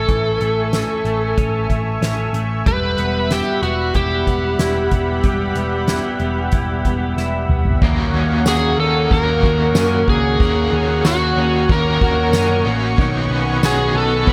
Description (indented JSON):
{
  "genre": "dream pop",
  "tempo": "93 BPM",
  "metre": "4/4",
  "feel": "straight",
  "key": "unclear",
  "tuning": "A4 = 440 Hz",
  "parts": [
    { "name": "overdriven slide guitar", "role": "melody", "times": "0.0-14.3 s", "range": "F#4 to B4", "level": "-23 LUFS", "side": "equal", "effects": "delay" },
    { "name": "lush unison pad", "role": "sustained chords", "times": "0.0-14.3 s", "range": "G3 to C#6", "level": "-26 LUFS", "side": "equal", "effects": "chorus" },
    { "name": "clean electric guitar", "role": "arpeggios", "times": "0.0-14.3 s", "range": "D#3 to F#4", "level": "-27 LUFS", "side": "equal", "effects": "analog chorus, delay" },
    { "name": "hollow-body short-scale picked electric bass", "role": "bass", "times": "0.0-14.3 s", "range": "E1 to F#2", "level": "-24 LUFS", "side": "equal", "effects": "none" },
    { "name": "soft-mallet drum kit", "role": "drums", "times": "0.1-14.3 s", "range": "hi-hat, kick drum, ride cymbal, snare drum, tambourine, toms", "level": "-23 LUFS", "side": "equal", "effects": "none" },
    { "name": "crunchy overdriven guitar", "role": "accompaniment", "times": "7.8-14.3 s", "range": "D#3 to C#5", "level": "-26 LUFS", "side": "equal", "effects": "tremolo, subtle chorus" }
  ],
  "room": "light reverb",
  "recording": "none",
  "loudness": "-17 LUFS",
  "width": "mono",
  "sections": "0.0-7.8 A section; 7.8-14.3 B section",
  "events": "drum fill 7.2-7.8",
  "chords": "0.0 Amaj7; 2.7 Emadd9; 7.8 D#m7; 13.0 Badd9"
}